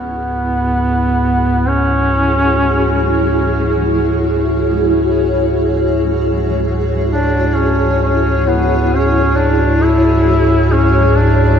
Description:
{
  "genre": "dark ambient drone",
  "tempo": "free time",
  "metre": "none",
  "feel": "none",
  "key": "C# phrygian",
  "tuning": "A4 = 439 Hz",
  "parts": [
    { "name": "warm duduk", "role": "melody", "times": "0.0-11.6 s", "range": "B3 to E4", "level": "-17 LUFS", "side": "equal", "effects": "shimmer reverb, diffuse ambient delay" },
    { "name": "granular cloud pad", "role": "sustained chords", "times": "0.2-11.6 s", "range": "E4 to C#5", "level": "-16 LUFS", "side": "left 1 dB", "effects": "built-in reverb, shimmer reverb" },
    { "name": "dark detuned synth bell", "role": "arpeggios", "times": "0.0-11.6 s", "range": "none", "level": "barely audible", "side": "none", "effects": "none" },
    { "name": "deep rumbling drone", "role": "drone", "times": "0.0-11.6 s", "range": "C#2 to G#2", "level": "-16 LUFS", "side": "equal", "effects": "built-in reverb, wide subtle chorus" }
  ],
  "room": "wet cathedral reverb, RT60 5.8 s",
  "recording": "none",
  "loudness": "-12 LUFS",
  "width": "side -8 dB against mid",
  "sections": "0.0-11.6 A section",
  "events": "none",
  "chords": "0.0 C#m",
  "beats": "free time"
}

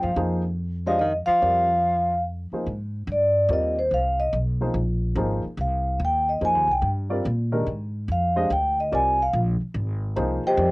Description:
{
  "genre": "jazz",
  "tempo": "144 BPM",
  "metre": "3/4",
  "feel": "swing 66% on 8ths",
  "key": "F dorian",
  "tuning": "A4 = 440 Hz",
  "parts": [
    { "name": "vibraphone with soft mallets", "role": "melody", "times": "0.0-10.7 s", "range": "G4 to Ab5", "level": "-21 LUFS", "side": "equal", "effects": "cassette tape" },
    { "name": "breathy tenor saxophone", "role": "second line", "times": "0.0-2.2 s", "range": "Eb3 to F3", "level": "-30 LUFS", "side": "left 1 dB", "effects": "cassette tape" },
    { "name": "dark upright piano", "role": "accompaniment", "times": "0.0-10.7 s", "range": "Eb3 to Eb5", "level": "-28 LUFS", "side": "equal", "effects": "cassette tape" },
    { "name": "upright bass", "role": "bass", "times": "0.0-10.7 s", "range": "Ab1 to Bb2", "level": "-26 LUFS", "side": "equal", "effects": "none" }
  ],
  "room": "moderate booth ambience, RT60 0.2 s",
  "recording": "home recording on cassette, nothing above 10.8 kHz",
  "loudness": "-21 LUFS",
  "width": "side -24 dB against mid",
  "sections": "0.0-2.7 A section; 2.7-10.7 B section",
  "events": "vibraphone solo 2.7-10.7",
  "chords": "0.0 Fm11",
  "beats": "| 0.16 0.58 1.00 | 1.41 1.83 2.25 | 2.67 3.08 3.50 | 3.92 4.34 4.75 | 5.17 5.59 6.00 | 6.42 6.84 7.26 | 7.67 8.09 8.51 | 8.92 9.34 9.75 | 10.17 10.58"
}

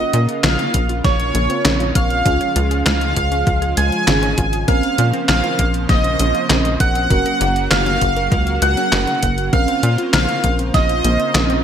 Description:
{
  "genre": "synthwave",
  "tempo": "99 BPM",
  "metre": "4/4",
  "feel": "straight",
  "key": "Bb minor",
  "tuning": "A4 = 444 Hz",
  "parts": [
    { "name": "soft supersaw", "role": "melody", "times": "0.0-11.5 s", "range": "Db5 to Ab5", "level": "-20 LUFS", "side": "right 1 dB", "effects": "ping-pong delay" },
    { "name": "soft synth bell", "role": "second line", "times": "0.0-11.5 s", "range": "Db6 to Ab6", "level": "-26 LUFS", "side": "right 1 dB", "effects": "chorus, phaser, tape echo" },
    { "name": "warm analog pad", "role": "sustained chords", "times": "0.0-11.6 s", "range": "Db3 to C5", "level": "-26 LUFS", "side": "right 1 dB", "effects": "chorus, sidechain pumping" },
    { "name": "wide unison pluck", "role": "arpeggios", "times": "0.0-11.6 s", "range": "Ab3 to Bb4", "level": "-28 LUFS", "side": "left 2 dB", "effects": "tape echo" },
    { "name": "FM electric piano with soft pad layer", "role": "stabs", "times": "0.0-11.6 s", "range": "Bb3 to Bb4", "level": "-25 LUFS", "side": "right 4 dB", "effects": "chorus, tremolo, tape echo" },
    { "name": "tight sequencer bass", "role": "bass", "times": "0.1-11.6 s", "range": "Gb1 to Bb2", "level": "-19 LUFS", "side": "equal", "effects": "none" },
    { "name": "detuned 8-bit digital drum machine", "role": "drums", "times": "0.1-11.6 s", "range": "handclaps, hi-hat, snare drum", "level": "-20 LUFS", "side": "left 1 dB", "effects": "overdrive, gated reverb" },
    { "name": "electronic kick drum", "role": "drums", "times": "0.7-10.9 s", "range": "none", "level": "-19 LUFS", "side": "equal", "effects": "overdrive" }
  ],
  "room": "light reverb, digital ambience",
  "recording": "none",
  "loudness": "-14 LUFS",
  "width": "side -8 dB against mid",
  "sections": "0.0-11.6 A section",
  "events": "none",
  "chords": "0.0 Bbmadd9; 2.3 Db; 4.7 Bbmadd9; 7.1 Gb; 9.5 Bbmadd9",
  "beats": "0.44 1.04 1.65 | 2.26 2.86 3.47 4.08 | 4.68 5.29 5.89 6.50 | 7.11 7.71 8.32 8.92 | 9.53 10.13 10.74 11.35"
}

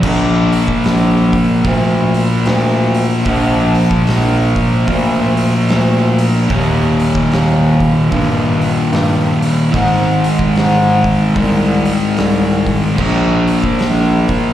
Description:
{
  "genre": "stoner and doom metal",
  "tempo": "74 BPM",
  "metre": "4/4",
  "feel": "swing 61% on 8ths",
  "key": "unclear",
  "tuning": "A4 = 440 Hz",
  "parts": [
    { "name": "fuzz guitar", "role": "riff", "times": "0.0-14.5 s", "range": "Eb2 to Bb3", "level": "-14 LUFS", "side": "equal", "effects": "distortion" },
    { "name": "raw garage guitar", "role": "riff", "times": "0.0-14.5 s", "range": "Eb2 to Bb3", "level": "-20 LUFS", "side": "equal", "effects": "overdrive, slapback echo" },
    { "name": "clear bass clarinet", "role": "bass", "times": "0.0-14.3 s", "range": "Bb1 to Ab2", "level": "-16 LUFS", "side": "equal", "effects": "overdrive" },
    { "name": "oversized low-tuned drum kit", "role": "drums", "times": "0.0-14.4 s", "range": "crash cymbal, hi-hat, kick drum, snare drum", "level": "-21 LUFS", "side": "equal", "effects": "none" }
  ],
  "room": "light reverb",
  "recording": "live gig heard through the venue's PA, recital hall reverb",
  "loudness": "-11 LUFS",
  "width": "side -12 dB against mid",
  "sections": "0.0-14.5 A section",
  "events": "none",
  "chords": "0.0 Bb; 6.5 Eb; 9.7 Ab; 13.0 Bb5",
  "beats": "| 0.03 0.83 1.64 2.44 | 3.25 4.06 4.87 5.67 | 6.48 7.29 8.10 8.91 | 9.73 10.54 11.35 12.17 | 12.98 13.80"
}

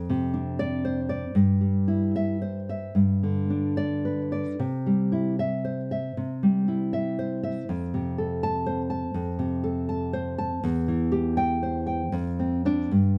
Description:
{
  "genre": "romantic piece for solo classical guitar",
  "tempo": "72-83 BPM",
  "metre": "4/4",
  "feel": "rubato",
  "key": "C major",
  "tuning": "A4 = 439 Hz",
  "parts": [
    { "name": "nylon-string guitar", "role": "solo", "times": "0.0-13.2 s", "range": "E2 to A5", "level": "-26 LUFS", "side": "equal", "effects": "none" }
  ],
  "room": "light reverb",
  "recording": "dark, warm production",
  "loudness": "-26 LUFS",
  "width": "mono",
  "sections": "0.0-13.2 A section",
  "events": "none",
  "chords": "0.0 Dm7/F; 1.4 C/G; 3.0 G; 4.6 C; 7.7 F; 10.6 C/E; 12.1 Dm7/F",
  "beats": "0.59 | 1.36 2.16 2.97 3.78 | 4.59 5.38 6.15 6.91 | 7.67 8.41 9.14 9.89 | 10.62 11.37 12.13 12.94"
}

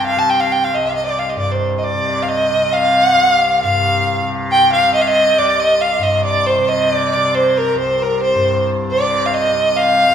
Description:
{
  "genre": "indian classical",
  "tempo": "136 BPM",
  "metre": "4/4",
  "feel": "straight",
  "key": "C raga bhimpalasi",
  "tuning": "A4 = 440 Hz",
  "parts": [
    { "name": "clear violin", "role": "melody", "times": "0.0-10.1 s", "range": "Bb4 to A5", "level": "-13 LUFS", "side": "equal", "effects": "none" },
    { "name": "tanpura", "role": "drone", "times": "0.0-10.1 s", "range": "C2 to C3", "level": "-22 LUFS", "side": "left 1 dB", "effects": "none" }
  ],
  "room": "wet concert hall reverb, RT60 2.5 s",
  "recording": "minimal, uncompressed stereo recording",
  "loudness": "-13 LUFS",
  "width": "side -8 dB against mid",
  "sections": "0.0-3.6 A section; 3.6-10.1 B section",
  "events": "none",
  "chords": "none",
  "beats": "| 0.09 0.53 0.97 1.42 | 1.86 2.30 2.74 3.18 | 3.62 4.06 4.50 4.94 | 5.38 5.82 6.26 6.70 | 7.14 7.58 8.01 8.45 | 8.89 9.32 9.76"
}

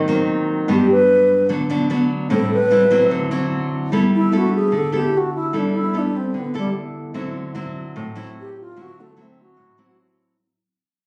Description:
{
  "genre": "bossa nova",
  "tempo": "149 BPM",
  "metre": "4/4",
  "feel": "straight",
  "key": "G major",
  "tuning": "A4 = 439 Hz",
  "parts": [
    { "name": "nylon-string guitar", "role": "accompaniment", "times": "0.0-10.4 s", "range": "G2 to A4", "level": "-22 LUFS", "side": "equal", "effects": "none" },
    { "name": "alto flute", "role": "melody", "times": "0.7-10.0 s", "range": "G3 to B4", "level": "-20 LUFS", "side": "equal", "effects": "none" },
    { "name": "vibraphone with medium mallets", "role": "accompaniment", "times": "0.9-7.2 s", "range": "D4 to A4", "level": "-33 LUFS", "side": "equal", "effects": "none" }
  ],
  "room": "light reverb",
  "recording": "recorded on a phone in the room, club reverb, compression",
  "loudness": "-18 LUFS",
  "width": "mono",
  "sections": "0.0-3.9 A section; 3.9-10.4 B section",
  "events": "alto flute solo 0.0-3.9, 3.9-10.4; fade-out 3.9-10.4",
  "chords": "0.0 Ab9 (rootless); 0.7 Gmaj7; 2.3 Am7; 3.1 D9; 3.9 G69; 7.1 D9",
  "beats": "0.29 | 0.69 1.09 1.50 1.90 | 2.30 2.71 3.11 3.51 | 3.92 4.32 4.72 5.13 | 5.53 5.94 6.34 6.74 | 7.15 7.55 7.95 8.36 | 8.76 9.17 9.57 9.97"
}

